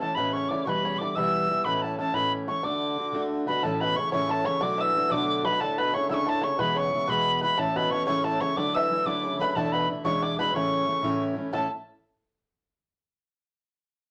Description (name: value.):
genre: celtic folk, Celtic jig.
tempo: 122 BPM (dotted quarters).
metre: 6/8.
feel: straight.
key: D major, A major from 3.6 s.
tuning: A4 = 440 Hz.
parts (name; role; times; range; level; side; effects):
tin whistle; melody; 0.0-11.7 s; A5 to E6; -29 LUFS; equal; none.
bluegrass banjo; second line; 0.0-11.7 s; A4 to E5; -36 LUFS; equal; none.
mellow bassoon; second line; 0.0-11.7 s; A2 to E3; -35 LUFS; equal; none.
fingerpicked plugged-in steel-string acoustic guitar; accompaniment; 0.0-11.7 s; E2 to F#4; -32 LUFS; equal; none.
room: wet studio reverb, RT60 0.6 s.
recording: none.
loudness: -26 LUFS.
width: mono.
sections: 0.0-3.6 A section; 3.6-11.5 B section.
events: none.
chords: 0.0 A; 0.7 Em; 1.7 A; 2.6 D; 3.6 A; 4.6 Bm7; 5.6 Dsus2; 6.6 E; 7.6 A; 8.6 Dadd9; 9.6 E7sus4; 10.0 E7; 10.5 A.